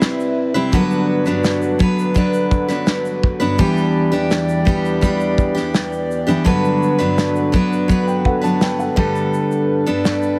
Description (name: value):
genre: acoustic pop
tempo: 84 BPM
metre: 4/4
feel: straight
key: G major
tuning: A4 = 440 Hz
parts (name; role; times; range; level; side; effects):
- dark upright piano; accompaniment; 0.0-10.4 s; G3 to A5; -30 LUFS; equal; none
- picked steel-string acoustic guitar; accompaniment; 0.0-10.4 s; G2 to B4; -20 LUFS; equal; none
- pedal harmonium; sustained chords; 0.0-10.4 s; E2 to D5; -26 LUFS; equal; none
- cloth-damped thuddy drum kit; drums; 0.0-10.4 s; kick drum, shaker, snare drum; -21 LUFS; equal; none
room: light reverb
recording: heavily compressed radio sound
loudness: -17 LUFS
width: mono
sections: 0.0-10.4 A section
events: none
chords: 0.0 Cmaj7; 0.7 Gmaj7; 3.6 Em7; 6.5 Gmaj7